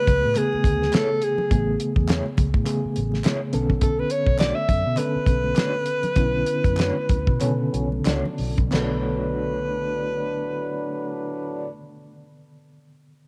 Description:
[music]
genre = lush 1970s-style soul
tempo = 88-104 BPM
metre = 4/4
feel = swing 58% on 16ths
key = B dorian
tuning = A4 = 440 Hz
[part]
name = breathy alto saxophone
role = melody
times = 0.0-11.7 s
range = G#4 to E5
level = -27 LUFS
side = equal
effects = none
[part]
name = mellow reed electric piano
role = accompaniment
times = 0.0-13.3 s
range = C#3 to C#5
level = -30 LUFS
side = equal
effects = fast tremolo, cassette tape
[part]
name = vintage muted fingered electric bass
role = bass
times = 0.1-11.7 s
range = A1 to B2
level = -29 LUFS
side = equal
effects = none
[part]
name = damped 70s drum kit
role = drums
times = 0.1-8.9 s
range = china cymbal, hi-hat, kick drum, snare drum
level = -24 LUFS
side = equal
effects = none
[part]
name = congas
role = percussion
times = 0.1-9.0 s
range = none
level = -38 LUFS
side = equal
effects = none
[part]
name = group handclap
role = percussion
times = 0.4-9.0 s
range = none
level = -44 LUFS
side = equal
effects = none
[part]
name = electric guitar through a small old amp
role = riff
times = 0.9-12.3 s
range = A3 to C#5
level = -36 LUFS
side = equal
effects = tremolo, cassette tape
[part]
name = muted trombone section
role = stabs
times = 7.4-11.7 s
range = A2 to D4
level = -35 LUFS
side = equal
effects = cassette tape
[sound]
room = light reverb, small room ambience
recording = home recording on cassette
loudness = -23 LUFS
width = mono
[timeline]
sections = 0.0-8.7 A section; 8.7-11.4 B section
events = slowing down 3.8-8.7; band accent 6.2-8.7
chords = 0.0 Amaj9; 3.5 Bm9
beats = 0.36 0.93 | 1.51 2.08 2.66 3.23 | 3.81 4.39 4.97 5.56 | 6.16 6.78 7.40 8.05 | 8.72 9.39 10.07 10.75

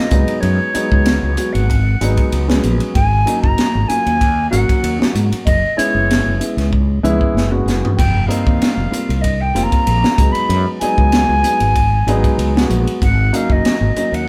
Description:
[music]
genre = electric jazz fusion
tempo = 95 BPM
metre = 4/4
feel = swing 53% on 16ths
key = unclear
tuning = A4 = 439 Hz
[part]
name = silver concert flute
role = melody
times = 0.0-14.3 s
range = Db5 to Cb6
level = -22 LUFS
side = equal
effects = none
[part]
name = warm grand piano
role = accompaniment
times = 0.0-14.2 s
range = Gb3 to Gb4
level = -23 LUFS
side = equal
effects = none
[part]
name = fretless electric bass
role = bass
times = 0.1-14.3 s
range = F1 to Ab2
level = -20 LUFS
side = equal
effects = none
[part]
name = crisp fusion drum kit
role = drums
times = 0.1-14.3 s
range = crash cymbal, hi-hat, kick drum, ride cymbal, snare drum, toms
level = -20 LUFS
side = equal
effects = none
[sound]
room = moderate stone room reverb, RT60 0.9 s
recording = band playing live in one room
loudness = -15 LUFS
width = mono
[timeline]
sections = 0.0-14.3 A section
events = drum fill 6.7-8.0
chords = 0.1 Db9sus4; 2.9 Ab9sus4; 5.5 Gb9sus4; 8.0 F9sus4; 10.2 Db9sus4; 13.0 Ab9sus4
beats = | 0.43 1.06 1.69 2.32 | 2.94 3.58 4.20 4.83 | 5.46 6.09 6.72 7.35 | 7.98 8.61 9.24 9.87 | 10.50 11.13 11.76 12.39 | 13.02 13.64 14.27

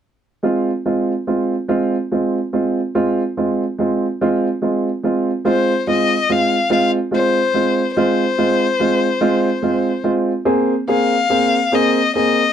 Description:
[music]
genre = pop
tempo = 48 BPM (dotted quarters)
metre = 6/8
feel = straight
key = F minor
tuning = A4 = 440 Hz
[part]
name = warm baby grand piano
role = accompaniment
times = 0.4-12.4 s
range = Ab3 to Ab4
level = -16 LUFS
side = right 2 dB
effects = none
[part]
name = warm violin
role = melody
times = 5.5-12.5 s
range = C5 to F5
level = -18 LUFS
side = left 5 dB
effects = none
[sound]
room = little or no reverb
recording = dry, close 1970s-style studio recording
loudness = -15 LUFS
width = side -9 dB against mid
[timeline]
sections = 0.4-5.5 A section; 5.5-12.5 B section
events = none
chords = 0.4 Fm; 10.5 Abadd9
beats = | 0.43 1.69 | 2.94 4.20 | 5.45 6.71 | 7.96 9.22 | 10.47 11.72

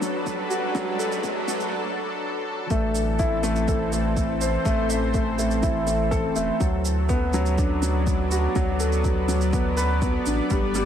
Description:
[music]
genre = piano and strings electronica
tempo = 123 BPM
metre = 4/4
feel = straight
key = unclear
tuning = A4 = 441 Hz
[part]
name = lush unison pad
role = sustained chords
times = 0.0-10.9 s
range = D3 to D5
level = -28 LUFS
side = equal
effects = chorus
[part]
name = warm upright piano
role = riff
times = 0.0-10.9 s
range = F#3 to E5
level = -25 LUFS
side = left 1 dB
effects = tape echo
[part]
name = shaker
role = drums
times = 0.0-10.8 s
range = none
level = -36 LUFS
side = right 6 dB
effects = none
[part]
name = riser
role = sound effects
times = 0.0-1.7 s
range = none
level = -35 LUFS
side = right 2 dB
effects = none
[part]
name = electronic kick drum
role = drums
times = 0.3-10.6 s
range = none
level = -26 LUFS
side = equal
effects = overdrive
[part]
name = warm sub bass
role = bass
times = 2.7-10.9 s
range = E1 to D2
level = -26 LUFS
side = right 1 dB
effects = sidechain pumping
[sound]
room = light reverb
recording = high-pass filter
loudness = -21 LUFS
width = side -9 dB against mid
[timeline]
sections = 0.0-2.7 A section; 2.7-10.9 B section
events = build-up 0.0-2.7; riser 0.0-1.7; break 1.7-2.7; drop 2.7-10.9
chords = 0.0 D6; 2.7 Am; 6.6 D6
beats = 0.27 | 0.75 1.24 1.73 2.22 | 2.71 3.19 3.68 4.17 | 4.66 5.14 5.63 6.12 | 6.61 7.10 7.58 8.07 | 8.56 9.05 9.54 10.02 | 10.51

